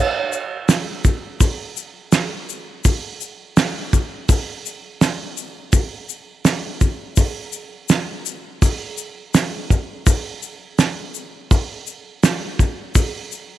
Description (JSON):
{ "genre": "rock", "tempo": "83 BPM", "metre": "4/4", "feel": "straight", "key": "none", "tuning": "none", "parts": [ { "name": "tube shaker", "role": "percussion", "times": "0.3-13.5 s", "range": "none", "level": "-28 LUFS", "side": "left 17 dB", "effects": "none" }, { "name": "cloth-damped thuddy drum kit", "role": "drums", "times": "0.7-13.1 s", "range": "hi-hat, kick drum, snare drum", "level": "-18 LUFS", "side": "right 1 dB", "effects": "none" } ], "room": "little or no reverb", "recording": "1960s-style stereo", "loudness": "-18 LUFS", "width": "side -13 dB against mid", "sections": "0.0-13.6 A section", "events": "none", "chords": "none" }